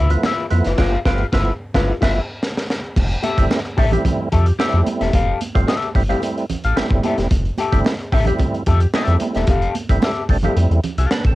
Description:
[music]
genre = funk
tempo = 110 BPM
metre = 4/4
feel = straight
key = unclear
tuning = A4 = 440 Hz
[part]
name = electric guitar at the edge of break-up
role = accompaniment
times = 0.0-11.1 s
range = F4 to F5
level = -22 LUFS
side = left 4 dB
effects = wah
[part]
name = round analog bass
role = bass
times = 0.0-11.3 s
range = E1 to F2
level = -18 LUFS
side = equal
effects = none
[part]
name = percussive tonewheel organ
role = stabs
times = 0.1-11.3 s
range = F3 to B4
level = -22 LUFS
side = right 2 dB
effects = overdrive, chorus vibrato, stopped rotary speaker
[part]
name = crunchy breakbeat drum kit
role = drums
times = 0.1-11.3 s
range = crash cymbal, hi-hat, kick drum, snare drum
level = -20 LUFS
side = equal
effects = cassette tape
[part]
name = congas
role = percussion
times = 0.2-11.2 s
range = none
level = -27 LUFS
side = right 5 dB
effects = none
[sound]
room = little or no reverb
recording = home recording on cassette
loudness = -16 LUFS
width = side -17 dB against mid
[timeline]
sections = 0.0-3.0 A section; 3.0-11.3 B section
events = band accent 0.8-3.0; drum fill 1.9-3.0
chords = 0.0 G13; 3.0 Fmaj9

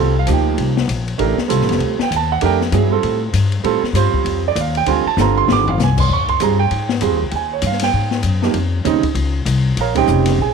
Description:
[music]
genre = modal jazz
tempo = 196 BPM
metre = 4/4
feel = swing 60% on 8ths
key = F mixolydian, Eb mixolydian from 6.1 s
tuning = A4 = 442 Hz
[part]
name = warm concert grand piano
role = accompaniment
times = 0.0-10.5 s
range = Db3 to D6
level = -17 LUFS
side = right 12 dB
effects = none
[part]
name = upright bass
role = bass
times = 0.0-10.5 s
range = F1 to A2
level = -18 LUFS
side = left 3 dB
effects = none
[part]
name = open jazz drum kit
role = drums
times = 0.3-10.3 s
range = crash cymbal, hi-hat, kick drum, ride cymbal, snare drum, toms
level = -23 LUFS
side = left 8 dB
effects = none
[sound]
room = light reverb, small room ambience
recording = 1960s-style stereo with parts hard left and right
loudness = -14 LUFS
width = side -6 dB against mid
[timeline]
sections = 0.0-6.1 A section; 6.1-10.5 A section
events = drum fill 5.2-5.8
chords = 0.0 F7; 4.9 Gm11; 6.1 Eb9sus4; 8.5 Bbm

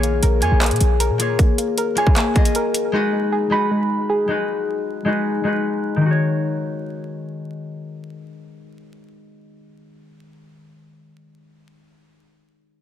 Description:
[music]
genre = hip hop, trap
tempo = 155 BPM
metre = 4/4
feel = half-time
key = Eb minor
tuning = A4 = 440 Hz
[part]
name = concert harp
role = accompaniment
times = 0.0-10.6 s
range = Eb3 to Eb5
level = -22 LUFS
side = left 4 dB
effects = low-pass filter
[part]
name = soft round pluck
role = arpeggios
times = 0.0-5.3 s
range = Ab3 to Cb6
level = -22 LUFS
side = right 3 dB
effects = chorus, low-pass filter, tape echo
[part]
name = short 808-style bass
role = bass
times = 0.0-1.4 s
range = Bb1 to Bb2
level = -18 LUFS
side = equal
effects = none
[part]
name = trap drum kit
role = drums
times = 0.0-2.8 s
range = handclaps, hi-hat, kick drum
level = -18 LUFS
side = equal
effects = none
[sound]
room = light reverb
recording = dense, heavily limited modern master, vinyl crackle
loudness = -17 LUFS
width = side -10 dB against mid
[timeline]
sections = 0.0-6.0 A section; 6.0-9.1 B section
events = none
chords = 0.0 Bbm7; 2.9 Abm7; 6.0 Ebm7

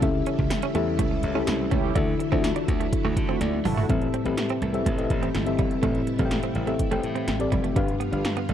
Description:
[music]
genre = 1980s-style pop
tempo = 124 BPM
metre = 4/4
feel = straight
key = A minor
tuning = A4 = 439 Hz
[part]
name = mellow FM electric piano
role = accompaniment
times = 0.0-8.5 s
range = G2 to A5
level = -27 LUFS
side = left 5 dB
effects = chorus
[part]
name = string machine, full ensemble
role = sustained chords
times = 0.0-8.5 s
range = C3 to F4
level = -32 LUFS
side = right 3 dB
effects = ensemble chorus
[part]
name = direct-recorded clean electric guitar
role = riff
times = 0.0-8.5 s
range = F#3 to D4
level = -32 LUFS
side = right 9 dB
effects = lush chorus, tape echo
[part]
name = glassy slap bass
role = bass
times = 0.0-8.5 s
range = F1 to D3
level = -29 LUFS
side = right 1 dB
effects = none
[part]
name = 80s electronic pad drums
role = drums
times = 0.0-8.5 s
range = hi-hat, kick drum, snare drum, tambourine, toms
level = -27 LUFS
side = right 1 dB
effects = gated reverb on snare and toms
[part]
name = mellow synth brass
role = stabs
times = 1.4-3.9 s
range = A3 to A4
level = -32 LUFS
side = right 6 dB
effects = chorus
[sound]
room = little or no reverb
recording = dry, close 1970s-style studio recording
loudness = -22 LUFS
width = side -10 dB against mid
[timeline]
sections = 0.0-3.9 A section; 3.9-8.5 B section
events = drum fill 3.4-3.9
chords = 0.0 A7/C#; 2.0 Dadd9; 3.9 Am7; 7.8 G7

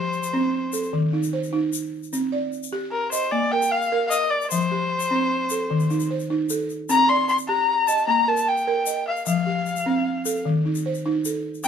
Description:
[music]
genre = west african traditional, West African string and xylophone music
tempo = 101 BPM (dotted quarters)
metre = 12/8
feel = straight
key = unclear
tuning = A4 = 441 Hz
[part]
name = rich erhu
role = melody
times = 0.0-11.7 s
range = Bb4 to C6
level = -22 LUFS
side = left 3 dB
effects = none
[part]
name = balafon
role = arpeggios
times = 0.0-11.7 s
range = Eb3 to G5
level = -24 LUFS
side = right 1 dB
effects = none
[part]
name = egg shaker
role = percussion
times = 0.1-11.7 s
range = none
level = -32 LUFS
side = left 6 dB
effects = none
[sound]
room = moderate studio reverb, RT60 0.6 s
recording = minimal, uncompressed stereo recording, lossy compression artefacts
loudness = -20 LUFS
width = side -7 dB against mid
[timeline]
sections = 0.0-11.7 A section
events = none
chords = 0.0 F; 0.9 Adim/Eb; 2.1 Cm; 3.3 Ebmaj9/Bb; 4.5 F; 5.7 Adim/Eb; 6.9 Cm; 8.1 Eb/Bb; 9.3 F; 10.5 Adim/Eb

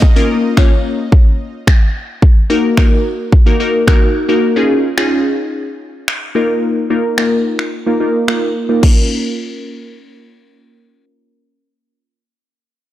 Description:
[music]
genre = dance-pop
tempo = 109 BPM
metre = 4/4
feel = straight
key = Bb minor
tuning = A4 = 439 Hz
[part]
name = pop drum kit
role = drums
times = 0.0-9.0 s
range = crash cymbal, finger snaps, kick drum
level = -12 LUFS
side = equal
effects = soft clipping on snare
[part]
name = glassy wavetable pluck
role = accompaniment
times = 0.2-12.2 s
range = Bb3 to Db5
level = -14 LUFS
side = left 1 dB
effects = chorus, low-pass filter
[sound]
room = light reverb, digital ambience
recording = blown-out, overdriven recording, overdrive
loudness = -11 LUFS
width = side -13 dB against mid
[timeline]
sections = 0.0-8.8 A section; 8.8-11.0 B section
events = filter sweep on synth pluck 0.0-8.8; kick muted 6.6-8.8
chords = 0.0 Bbm; 2.2 Ebm; 4.4 Dbadd9; 6.4 Ebsus2; 8.8 Bbm

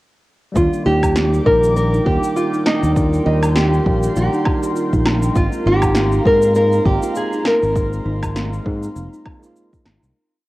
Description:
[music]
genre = sunset chillout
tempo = 100 BPM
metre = 4/4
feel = swing 57% on 16ths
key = Eb major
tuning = A4 = 436 Hz
[part]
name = tine electric piano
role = accompaniment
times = 0.5-10.2 s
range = Eb3 to D5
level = -26 LUFS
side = equal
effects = auto-pan, cassette tape
[part]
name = nylon-string guitar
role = melody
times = 0.6-9.5 s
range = Eb4 to Bb4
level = -18 LUFS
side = equal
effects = cassette tape, analog delay
[part]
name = airy breathy pad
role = sustained chords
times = 0.9-10.1 s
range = Bb4 to D6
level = -28 LUFS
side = right 1 dB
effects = chorus, phaser, cassette tape
[part]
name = kalimba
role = arpeggios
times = 0.6-10.1 s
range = C4 to G4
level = -26 LUFS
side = right 1 dB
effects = cassette tape, analog delay
[part]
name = fingered electric bass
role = bass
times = 0.6-10.1 s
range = F1 to Ab2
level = -19 LUFS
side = equal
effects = none
[part]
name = electronic kick drum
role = drums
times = 0.6-9.8 s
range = none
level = -21 LUFS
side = equal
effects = overdrive
[part]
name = electronic shaker, woodblock and snare drum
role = drums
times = 0.6-10.1 s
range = none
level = -23 LUFS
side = equal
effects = overdrive
[sound]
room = moderate spring reverb, RT60 2.0 s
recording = home recording on cassette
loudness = -14 LUFS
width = side -18 dB against mid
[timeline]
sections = 0.6-10.2 groove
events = fade-out 7.0-10.2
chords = 0.6 Ebmaj7; 5.4 Ab69

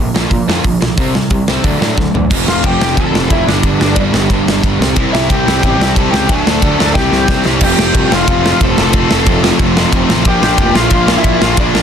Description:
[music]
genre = punk rock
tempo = 181 BPM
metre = 4/4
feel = straight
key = unclear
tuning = A4 = 440 Hz
[part]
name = biting overdriven guitar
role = riff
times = 0.0-11.8 s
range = F2 to D4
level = -18 LUFS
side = right 13 dB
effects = none
[part]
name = raw garage guitar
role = riff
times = 0.0-11.8 s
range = F2 to F4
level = -19 LUFS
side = left 12 dB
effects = overdrive
[part]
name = fuzz picked electric bass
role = bass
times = 0.0-11.8 s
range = F1 to Bb2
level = -17 LUFS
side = equal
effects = overdrive
[part]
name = big rock drum kit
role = drums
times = 0.2-11.8 s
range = crash cymbal, hi-hat, kick drum, ride cymbal, snare drum, toms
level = -14 LUFS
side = equal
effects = none
[part]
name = smooth overdriven lead guitar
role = melody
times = 2.5-11.8 s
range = D4 to A5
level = -17 LUFS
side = left 2 dB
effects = ping-pong delay
[part]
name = tight distorted guitar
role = riff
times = 5.0-11.8 s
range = F2 to E4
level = -19 LUFS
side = left 1 dB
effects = distortion
[sound]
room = light reverb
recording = dense, heavily limited modern master, lossy compression artefacts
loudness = -10 LUFS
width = side -8 dB against mid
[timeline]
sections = 0.0-2.3 A section; 2.3-7.6 B section; 7.6-11.8 C section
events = drum fill 2.0-2.3, 7.0-7.6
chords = 0.0 Bb; 1.0 C5; 1.6 D; 2.3 F; 3.5 G; 4.8 C; 6.3 D; 7.0 C7; 7.6 F; 10.3 Bb

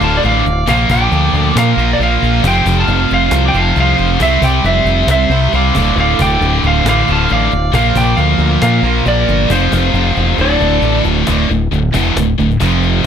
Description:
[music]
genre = hard rock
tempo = 136 BPM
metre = 4/4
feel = straight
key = D minor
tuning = A4 = 440 Hz
[part]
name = lightly driven lead guitar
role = melody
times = 0.0-11.0 s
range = C5 to A5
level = -17 LUFS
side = right 2 dB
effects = slapback echo
[part]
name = cranked stack guitar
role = riff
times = 0.0-13.0 s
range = D2 to C4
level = -19 LUFS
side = right 12 dB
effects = overdrive, phaser
[part]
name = distorted electric guitar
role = riff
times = 0.0-13.0 s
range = D2 to C4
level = -21 LUFS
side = equal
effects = overdrive
[part]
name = high-gain distorted guitar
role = riff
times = 0.0-13.1 s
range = D2 to C4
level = -18 LUFS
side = left 13 dB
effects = distortion
[part]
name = growling fingered electric bass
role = bass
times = 0.0-13.0 s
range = D1 to Bb2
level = -15 LUFS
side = left 1 dB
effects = overdrive
[part]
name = cajon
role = drums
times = 0.0-12.9 s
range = none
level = -23 LUFS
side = left 1 dB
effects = none
[part]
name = octave-fuzz lead guitar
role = second line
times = 0.1-11.0 s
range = F4 to F5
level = -21 LUFS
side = right 2 dB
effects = distortion, slapback echo
[sound]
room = light reverb, digital ambience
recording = none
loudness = -10 LUFS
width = side -8 dB against mid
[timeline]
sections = 0.0-11.3 A section; 11.3-13.1 B section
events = kick and snare drop out 10.4-11.3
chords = 0.0 Dm; 0.7 Bb; 2.4 F5; 4.2 C; 5.7 Dm; 7.7 Bb; 9.5 F5; 10.4 D5; 12.6 F5

